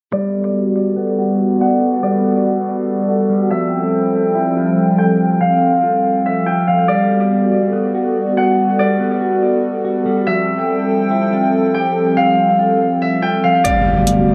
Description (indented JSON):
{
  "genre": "hip hop, atmospheric cloud-rap",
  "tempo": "142 BPM",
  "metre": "4/4",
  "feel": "half-time",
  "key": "G major",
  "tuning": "A4 = 444 Hz",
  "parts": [
    { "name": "Celtic harp", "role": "melody", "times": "0.1-14.3 s", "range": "D5 to G5", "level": "-21 LUFS", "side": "equal", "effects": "low-pass filter, tape echo" },
    { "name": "hollow soft pad", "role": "sustained chords", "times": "0.1-14.3 s", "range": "D3 to G5", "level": "-18 LUFS", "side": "equal", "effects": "chorus, low-pass filter" },
    { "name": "mellow electric guitar", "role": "arpeggios", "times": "0.1-14.3 s", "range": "F3 to G4", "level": "-24 LUFS", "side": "equal", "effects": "spring reverb, low-pass filter, tape echo" },
    { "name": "electronic hi-hat", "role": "drums", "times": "13.6-14.2 s", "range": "none", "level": "-24 LUFS", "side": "equal", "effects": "overdrive" },
    { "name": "impact", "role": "sound effects", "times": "13.6-14.3 s", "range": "none", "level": "-22 LUFS", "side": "equal", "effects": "none" }
  ],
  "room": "light reverb, digital ambience",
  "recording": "echo-heavy mix",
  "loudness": "-16 LUFS",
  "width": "mono",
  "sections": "0.1-13.6 A section",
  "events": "filter sweep 0.1-13.6; kick muted 13.6-14.3; impact 13.6-14.3",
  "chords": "0.1 Gmaj9; 3.5 Fmaj9; 6.9 Gmaj9; 10.3 Fmaj9; 13.6 Gmaj9",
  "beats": "| 0.13 0.55 0.97 1.40 | 1.82 2.24 2.66 3.08 | 3.51 3.93 4.35 4.78 | 5.20 5.62 6.04 6.46 | 6.89 7.31 7.73 8.15 | 8.58 9.00 9.42 9.85 | 10.27 10.69 11.11 11.54 | 11.96 12.38 12.80 13.23 | 13.65 14.07"
}